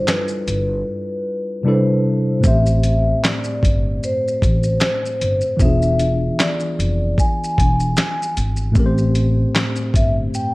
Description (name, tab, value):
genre	lo-fi hip hop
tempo	76 BPM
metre	4/4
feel	swing 58% on 16ths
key	unclear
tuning	A4 = 440 Hz
part	vibraphone with soft mallets	melody	0.0-10.5 s	B4 to G#5	-22 LUFS	left 1 dB	low-pass filter
part	mellow tine electric piano	accompaniment	0.0-10.5 s	A2 to D5	-21 LUFS	equal	medium stereo tremolo, cassette tape, low-pass filter
part	dusty soul sampler-style drum kit	drums	0.1-10.5 s	handclaps, hi-hat, kick drum, shaker, snare drum	-19 LUFS	equal	none
part	upright bass	bass	0.5-10.3 s	E1 to A1	-20 LUFS	equal	none
room	little or no reverb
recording	none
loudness	-16 LUFS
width	side -22 dB against mid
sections	0.0-2.4 A section; 2.4-10.5 B section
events	drums muted 0.9-2.4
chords	0.0 G13; 1.6 C69; 2.4 Am7; 5.6 E7b9; 8.8 Am7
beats	0.07 0.86 1.65 | 2.44 3.23 4.01 4.80 | 5.59 6.38 7.17 7.96 | 8.75 9.54 10.33